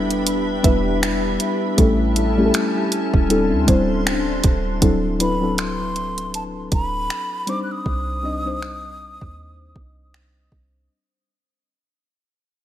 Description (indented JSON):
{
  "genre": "contemporary R&B",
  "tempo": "79 BPM",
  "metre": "4/4",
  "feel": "swing 58% on 16ths",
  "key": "unclear",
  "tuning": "A4 = 440 Hz",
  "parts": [
    { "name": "muted felt-like synth keys", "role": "accompaniment", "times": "0.0-10.9 s", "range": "F#3 to Eb5", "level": "-21 LUFS", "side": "left 2 dB", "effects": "chorus, analog delay" },
    { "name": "glassy FM pad", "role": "sustained chords", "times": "0.0-4.8 s", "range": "C#4 to C6", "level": "-26 LUFS", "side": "left 1 dB", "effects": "ensemble chorus, built-in reverb" },
    { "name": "clean 808-style bass", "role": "bass", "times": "0.0-10.9 s", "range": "D1 to Eb2", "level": "-26 LUFS", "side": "right 1 dB", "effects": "none" },
    { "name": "smooth R&B drum kit", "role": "drums", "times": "0.1-10.7 s", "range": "finger snaps, hi-hat, kick drum", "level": "-20 LUFS", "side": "right 1 dB", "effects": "none" },
    { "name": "glassy wavetable pluck", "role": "texture", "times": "0.6-2.1 s", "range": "E5", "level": "-33 LUFS", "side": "right 3 dB", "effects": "none" },
    { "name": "breathy concert flute", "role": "melody", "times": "5.2-10.1 s", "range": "A5 to F#6", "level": "-27 LUFS", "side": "equal", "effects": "analog delay" }
  ],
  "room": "light reverb",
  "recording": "echo-heavy mix",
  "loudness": "-17 LUFS",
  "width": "side -11 dB against mid",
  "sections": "0.0-4.8 A section; 4.8-10.9 B section",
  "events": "fade-out 4.8-10.9",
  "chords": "0.0 Em7; 1.8 A7; 3.3 D9sus4; 4.8 D9; 7.5 Cmadd9"
}